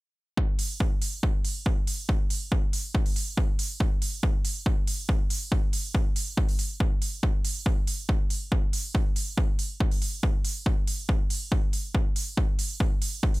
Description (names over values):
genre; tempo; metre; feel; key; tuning
techno; 140 BPM; 4/4; straight; none; none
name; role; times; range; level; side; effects
electronic kick drum; drums; 0.4-13.3 s; none; -25 LUFS; equal; none
electronic hi-hat; drums; 0.6-13.4 s; none; -33 LUFS; right 3 dB; sidechain pumping on hats
room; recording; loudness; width
little or no reverb; none; -25 LUFS; side -20 dB against mid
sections
0.4-13.4 A section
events
none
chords
none